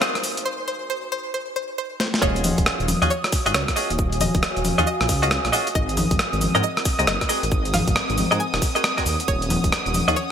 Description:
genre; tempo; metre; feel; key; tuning
UK garage, two-step garage; 136 BPM; 4/4; swing 63% on 16ths; Eb dorian; A4 = 440 Hz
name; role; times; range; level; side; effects
string-like resonator pluck; melody; 0.0-10.3 s; C5 to Ab5; -29 LUFS; equal; chorus, ping-pong delay
airy breathy pad; sustained chords; 0.0-10.3 s; Eb6; -31 LUFS; right 2 dB; chorus, sidechain pumping
direct-recorded clean electric guitar; stabs; 0.0-10.2 s; C4 to Eb5; -24 LUFS; equal; wide subtle chorus, ping-pong delay
breakbeat sampler-style drum kit; drums; 0.0-10.3 s; congas, hi-hat, rim click, shaker, snare drum; -23 LUFS; left 1 dB; overdrive, gated reverb
warbly tape-like pad; texture; 0.0-10.3 s; C4 to Ab5; -32 LUFS; equal; chorus, built-in reverb, sidechain pumping
dark detuned saw bass; bass; 2.2-10.1 s; Eb1 to Ab2; -25 LUFS; equal; none
electronic kick drum; drums; 2.2-9.7 s; none; -24 LUFS; equal; none
room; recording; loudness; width
moderate lush hall reverb, RT60 2.0 s, digital ambience; bright 1980s-style digital production; -19 LUFS; side -8 dB against mid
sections
0.0-2.2 A section; 2.2-10.3 B section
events
build-up 0.0-2.2; break 0.5-2.2; drum fill 2.0; drop 2.2-10.3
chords
0.0 Ab9; 2.2 Ebm11; 5.8 Ab9; 9.3 Ebm11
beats
0.02 | 0.46 0.90 1.34 1.78 | 2.22 2.66 3.10 3.54 | 3.99 4.43 4.87 5.31 | 5.75 6.19 6.63 7.08 | 7.52 7.96 8.40 8.84 | 9.28 9.72 10.16

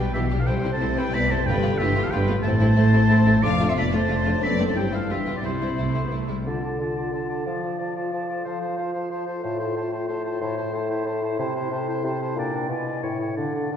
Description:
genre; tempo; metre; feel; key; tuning
classical, dramatic, fast romantic movement for symphony orchestra; 182 BPM; 3/4; rubato; C major, D minor from 6.5 s; A4 = 440 Hz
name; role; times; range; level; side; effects
clear symphonic violin section; melody; 0.0-6.4 s; D4 to G4; -34 LUFS; left 3 dB; none
clear oboe; second line; 0.0-13.8 s; C5 to D6; -30 LUFS; left 1 dB; none
warm symphonic violin section; second line; 0.0-6.1 s; E4 to F5; -31 LUFS; left 3 dB; none
rich symphonic viola section; accompaniment; 0.0-6.5 s; G3 to D4; -31 LUFS; right 1 dB; none
dark French horn section; sustained chords; 0.0-6.1 s; C3 to D4; -25 LUFS; left 2 dB; none
concert harp; arpeggios; 0.0-13.8 s; F2 to F5; -31 LUFS; left 3 dB; none
rich symphonic cello section; bass; 0.0-6.4 s; F2 to C3; -27 LUFS; right 2 dB; none
rich symphonic double bass section; bass; 0.0-6.4 s; F1 to C2; -26 LUFS; right 2 dB; none
timpani; percussion; 1.5-1.9 s; G2; -33 LUFS; equal; none
mellow hollow silver concert flute; second line; 6.5-13.8 s; F5 to A5; -40 LUFS; left 1 dB; none
warm clarinet; second line; 6.5-13.8 s; D4 to F4; -32 LUFS; equal; none
mellow bassoon; accompaniment; 6.5-13.8 s; A2 to F3; -29 LUFS; equal; none
room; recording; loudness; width
wet scoring stage reverb, RT60 1.9 s; heard from further back in the room; -21 LUFS; side -8 dB against mid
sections
0.0-6.5 A section; 6.5-13.8 B section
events
none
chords
0.5 C; 1.5 G9; 2.4 Am; 3.4 Dm/F; 4.4 D7/F#; 4.8 C/G; 5.1 G7; 5.4 C; 6.5 Dm; 7.5 Dm/F; 8.5 F; 9.4 F/A; 10.4 Am; 11.4 Am/C; 12.4 Gm/Bb; 12.7 E7/B; 13.0 A7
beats
0.15 | 0.48 0.81 1.14 | 1.47 1.79 2.12 | 2.45 2.77 3.10 | 3.43 3.76 4.09 | 4.42 4.75 5.09 | 5.43 5.78 6.12 | 6.46 6.80 7.13 | 7.46 7.80 8.13 | 8.46 8.78 9.11 | 9.44 9.76 10.09 | 10.41 10.74 11.06 | 11.39 11.72 12.05 | 12.37 12.70 13.03 | 13.38 13.72

